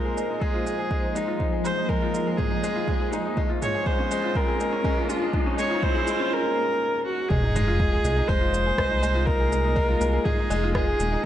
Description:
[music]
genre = piano and strings electronica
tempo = 122 BPM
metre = 4/4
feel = straight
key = unclear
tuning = A4 = 440 Hz
[part]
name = warm viola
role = melody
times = 0.0-11.3 s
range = Eb4 to Db5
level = -27 LUFS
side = right 1 dB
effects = none
[part]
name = granular cloud pad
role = sustained chords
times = 0.0-11.3 s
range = F3 to C5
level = -33 LUFS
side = equal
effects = built-in reverb, sidechain pumping
[part]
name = bright concert grand piano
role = riff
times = 0.0-11.3 s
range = Ab3 to Ab4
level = -28 LUFS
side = left 1 dB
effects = none
[part]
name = riser and sub drop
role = sound effects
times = 2.5-9.3 s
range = none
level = -33 LUFS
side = equal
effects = none
[part]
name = deep house drum kit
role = drums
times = 0.2-11.1 s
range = rim click, shaker, toms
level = -33 LUFS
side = right 1 dB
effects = overdrive
[part]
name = electronic kick drum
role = drums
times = 0.4-10.8 s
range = none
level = -27 LUFS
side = equal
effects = overdrive
[part]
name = round analog bass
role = bass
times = 7.3-11.2 s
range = Eb1 to C2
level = -26 LUFS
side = equal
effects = sidechain pumping
[sound]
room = moderate scoring stage reverb, RT60 1.6 s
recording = nothing above 10.4 kHz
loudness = -22 LUFS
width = side -11 dB against mid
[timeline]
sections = 0.0-7.3 A section; 7.3-11.3 B section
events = build-up 0.0-7.3; riser 2.5-6.3; drop 7.3-11.3; impact 7.3-9.3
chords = 0.0 Fm7; 3.4 Bbm7; 7.3 Fm7

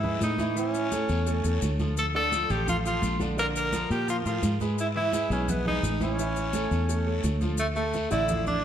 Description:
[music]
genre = latin, salsa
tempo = 171 BPM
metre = 4/4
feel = straight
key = unclear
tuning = A4 = 440 Hz
[part]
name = clear tenor saxophone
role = melody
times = 0.0-8.6 s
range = A3 to Bb4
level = -29 LUFS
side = equal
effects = slapback echo
[part]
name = bright concert grand piano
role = accompaniment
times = 0.0-8.6 s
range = D3 to D6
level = -32 LUFS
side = right 2 dB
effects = none
[part]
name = fingered electric bass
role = bass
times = 0.0-8.6 s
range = A1 to Bb2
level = -29 LUFS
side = equal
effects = none
[part]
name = congas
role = percussion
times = 0.0-8.6 s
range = none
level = -35 LUFS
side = right 1 dB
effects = none
[part]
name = guiro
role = percussion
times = 0.2-8.6 s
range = none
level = -42 LUFS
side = left 4 dB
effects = none
[part]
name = maracas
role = percussion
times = 0.2-8.6 s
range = none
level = -41 LUFS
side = left 6 dB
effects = none
[sound]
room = moderate plate reverb, RT60 2.4 s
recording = heard from further back in the room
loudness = -24 LUFS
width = side -9 dB against mid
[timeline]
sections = 0.0-7.6 A section; 7.6-8.6 B section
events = none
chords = 0.0 E; 0.6 A; 2.0 Dm; 3.4 Bb; 4.8 E; 6.2 A; 7.6 Dm

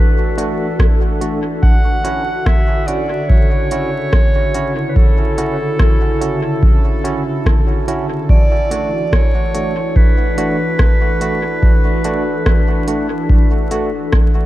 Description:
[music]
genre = ambient dub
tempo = 72 BPM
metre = 4/4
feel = swing 54% on 16ths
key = unclear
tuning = A4 = 440 Hz
[part]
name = warm clarinet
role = melody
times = 0.0-14.1 s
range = A4 to F#5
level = -22 LUFS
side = equal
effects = dub echo
[part]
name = warbly tape-like pad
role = sustained chords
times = 0.0-14.5 s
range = C#3 to A4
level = -21 LUFS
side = left 1 dB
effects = chorus, built-in reverb
[part]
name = barky tine electric piano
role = stabs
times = 0.4-13.9 s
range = A3 to F#4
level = -24 LUFS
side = right 3 dB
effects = overdrive, medium stereo tremolo, dub echo
[part]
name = organic electronic drum kit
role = drums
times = 0.4-14.3 s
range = hi-hat, rim click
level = -26 LUFS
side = equal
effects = overdrive, dub echo
[part]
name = electronic kick drum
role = drums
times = 0.8-14.3 s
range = none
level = -13 LUFS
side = equal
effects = none
[part]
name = bubbling stepped-filter texture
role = texture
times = 3.4-14.5 s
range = A4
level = -33 LUFS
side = right 2 dB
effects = chorus, built-in reverb
[sound]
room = light reverb, digital ambience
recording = dark, warm production, vinyl crackle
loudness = -13 LUFS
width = side -15 dB against mid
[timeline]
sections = 0.0-14.5 A section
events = none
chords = 0.0 E9sus4; 1.6 Dmaj9; 8.3 E9sus4

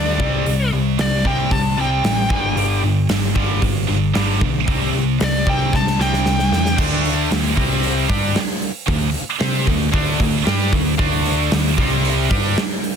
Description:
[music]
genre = hard rock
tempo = 114 BPM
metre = 4/4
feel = straight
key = unclear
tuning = A4 = 445 Hz
[part]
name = smooth overdriven lead guitar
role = melody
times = 0.0-6.8 s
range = D5 to A5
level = -24 LUFS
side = left 2 dB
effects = analog delay
[part]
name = heavy high-gain guitar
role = riff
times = 0.0-12.6 s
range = G2 to C5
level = -23 LUFS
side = right 14 dB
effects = distortion
[part]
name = tight distorted guitar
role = riff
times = 0.0-12.6 s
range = G2 to C5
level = -25 LUFS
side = left 13 dB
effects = distortion
[part]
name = hollow-body short-scale picked electric bass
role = bass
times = 0.0-12.6 s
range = G1 to C3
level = -21 LUFS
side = equal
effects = none
[part]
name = gated 80s drum kit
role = drums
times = 0.2-13.0 s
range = crash cymbal, hi-hat, kick drum, snare drum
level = -21 LUFS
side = right 1 dB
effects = none
[part]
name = heavy high-gain guitar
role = riff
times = 6.8-12.6 s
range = C3 to C5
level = -26 LUFS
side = right 1 dB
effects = distortion
[sound]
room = light reverb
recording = dense, heavily limited modern master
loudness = -16 LUFS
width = side -7 dB against mid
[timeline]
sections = 0.0-6.8 A section; 6.8-13.0 B section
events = lead electric guitar solo 0.0-6.8; drum fill 5.7-6.8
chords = 0.2 C5; 2.3 G5; 4.7 C5; 6.8 D5; 7.6 C5; 8.1 D5; 11.8 C5; 12.3 G5

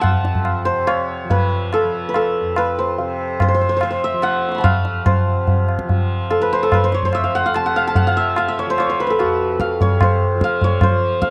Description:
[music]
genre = indian classical, Hindustani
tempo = 145 BPM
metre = 4/4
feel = straight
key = F raga puriya dhanashri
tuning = A4 = 440 Hz
[part]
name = santur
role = melody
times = 0.0-11.3 s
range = Gb4 to Db6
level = -21 LUFS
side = equal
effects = tape echo
[part]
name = tanpura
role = drone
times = 0.0-11.3 s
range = F2 to F3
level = -31 LUFS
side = equal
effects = none
[part]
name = tabla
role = percussion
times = 0.0-11.3 s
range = none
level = -21 LUFS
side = equal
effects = none
[sound]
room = light reverb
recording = dry, close 1970s-style studio recording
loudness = -18 LUFS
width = mono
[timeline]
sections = 0.0-11.3 A section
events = speeding up 0.0-11.3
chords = none

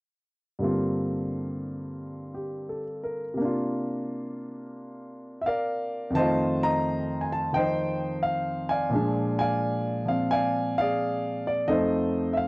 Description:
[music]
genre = solo jazz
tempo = 87 BPM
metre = 4/4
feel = swing 69% on 8ths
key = F mixolydian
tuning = A4 = 440 Hz
[part]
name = warm grand piano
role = solo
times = 0.6-12.5 s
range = F2 to Bb5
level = -25 LUFS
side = equal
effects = none
[sound]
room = light reverb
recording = dry, close 1970s-style studio recording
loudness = -25 LUFS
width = side -25 dB against mid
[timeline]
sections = 0.6-6.1 A section; 6.1-12.5 B section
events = none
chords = 0.6 Gm7; 3.4 C9sus4; 6.1 F7; 8.9 Bb7; 11.7 F7

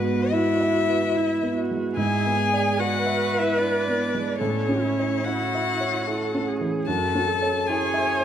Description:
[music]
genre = classical, slow romantic movement for piano quartet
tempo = 74 BPM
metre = 3/4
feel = rubato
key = unclear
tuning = A4 = 436 Hz
[part]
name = rich violin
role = melody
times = 0.0-8.2 s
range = B4 to A5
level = -26 LUFS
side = left 7 dB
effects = none
[part]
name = rich cello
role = second line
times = 0.0-8.2 s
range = B3 to A4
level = -29 LUFS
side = right 3 dB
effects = none
[part]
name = dark baby grand piano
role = accompaniment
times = 0.0-8.2 s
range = F#2 to E5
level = -26 LUFS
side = right 2 dB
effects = none
[part]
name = warm viola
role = accompaniment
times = 0.0-8.2 s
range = E4 to C#5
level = -28 LUFS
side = right 2 dB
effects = none
[sound]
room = moderate concert hall reverb, RT60 2.2 s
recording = none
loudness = -21 LUFS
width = side -9 dB against mid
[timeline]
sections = 0.0-8.2 A section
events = none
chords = 0.0 E/G#; 2.0 E7/G#; 4.4 A; 6.9 F#m7

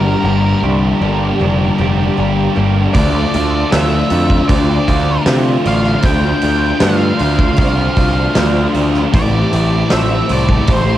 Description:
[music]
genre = rock, shoegaze and dream pop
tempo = 78 BPM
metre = 4/4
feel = straight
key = D minor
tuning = A4 = 439 Hz
[part]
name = octave-fuzz lead guitar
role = melody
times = 0.0-11.0 s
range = Bb4 to G5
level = -22 LUFS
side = right 1 dB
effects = distortion, cassette tape, tape echo
[part]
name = hollow soft pad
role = sustained chords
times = 0.0-11.0 s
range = F4 to C6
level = -24 LUFS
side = right 1 dB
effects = ensemble chorus, cassette tape
[part]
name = picked twelve-string acoustic guitar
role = arpeggios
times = 0.0-11.0 s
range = E3 to G4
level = -27 LUFS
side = right 3 dB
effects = none
[part]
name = biting overdriven guitar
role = riff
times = 0.0-11.0 s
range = G2 to G4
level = -21 LUFS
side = right 8 dB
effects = reverse reverb, cassette tape
[part]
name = thick fuzz guitar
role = riff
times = 0.0-11.0 s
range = G2 to D4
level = -17 LUFS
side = left 5 dB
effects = distortion, wide subtle chorus, cassette tape
[part]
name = growling picked electric bass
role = bass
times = 0.0-11.0 s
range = F1 to C3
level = -16 LUFS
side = equal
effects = overdrive
[part]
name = huge arena drum kit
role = drums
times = 2.9-10.9 s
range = hi-hat, kick drum, snare drum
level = -17 LUFS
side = equal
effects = none
[sound]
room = light reverb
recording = home recording on cassette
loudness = -11 LUFS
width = side -13 dB against mid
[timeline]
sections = 0.0-11.0 A section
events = none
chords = 0.0 Gm; 3.0 Dm7; 9.1 Am7

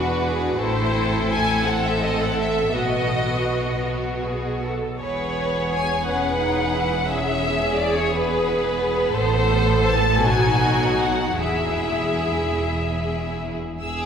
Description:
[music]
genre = classical, slow romantic movement for string orchestra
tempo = 47-60 BPM (dotted quarters)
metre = 6/8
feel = rubato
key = E major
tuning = A4 = 441 Hz
[part]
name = clear symphonic violin section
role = melody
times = 0.0-14.1 s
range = B4 to E6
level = -24 LUFS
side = left 2 dB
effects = none
[part]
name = clear studio violin section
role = second line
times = 0.0-14.1 s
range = B3 to A4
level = -27 LUFS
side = left 2 dB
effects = none
[part]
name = rich studio viola section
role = accompaniment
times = 0.0-13.2 s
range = E4 to C#5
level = -26 LUFS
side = right 2 dB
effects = none
[part]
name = clear symphonic cello section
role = bass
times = 0.0-14.1 s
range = E2 to B2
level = -28 LUFS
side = right 2 dB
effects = none
[part]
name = rich symphonic double bass section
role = bass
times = 0.0-14.1 s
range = E1 to B1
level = -27 LUFS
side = right 1 dB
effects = none
[sound]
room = wet church reverb, RT60 3.9 s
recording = recorded in a church or concert hall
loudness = -19 LUFS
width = side -7 dB against mid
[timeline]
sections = 0.0-13.8 A section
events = none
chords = 0.0 E7; 0.6 Am; 2.8 B; 5.0 E; 9.2 Am; 10.2 B; 11.4 E

